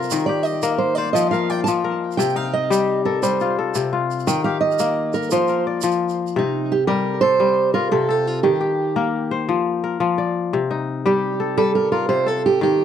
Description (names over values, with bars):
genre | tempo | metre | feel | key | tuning
west african traditional, West African string and xylophone music | 115 BPM (dotted quarters) | 12/8 | straight | C dorian | A4 = 440 Hz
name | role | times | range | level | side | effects
fingerpicked steel-string acoustic guitar | melody | 0.0-12.8 s | Eb4 to A5 | -20 LUFS | right 5 dB | tape echo
kora | arpeggios | 0.0-12.8 s | C3 to D5 | -20 LUFS | left 6 dB | none
tube shaker | percussion | 0.0-6.3 s | none | -31 LUFS | right 21 dB | none
room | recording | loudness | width
light reverb | dry, close 1970s-style studio recording | -18 LUFS | side -9 dB against mid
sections
0.0-6.4 A section; 6.4-12.8 B section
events
steel-string acoustic guitar solo 0.0-6.4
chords
0.1 Eb; 1.2 F5; 2.2 Cm; 4.3 Eb; 5.3 F5; 6.4 C5; 8.4 Eb; 9.5 F5; 10.5 Cm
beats
| 0.11 0.63 1.15 1.67 | 2.19 2.71 3.23 3.75 | 4.27 4.79 5.31 5.83 | 6.35 6.88 7.40 7.92 | 8.44 8.96 9.48 10.01 | 10.53 11.05 11.57 12.09 | 12.62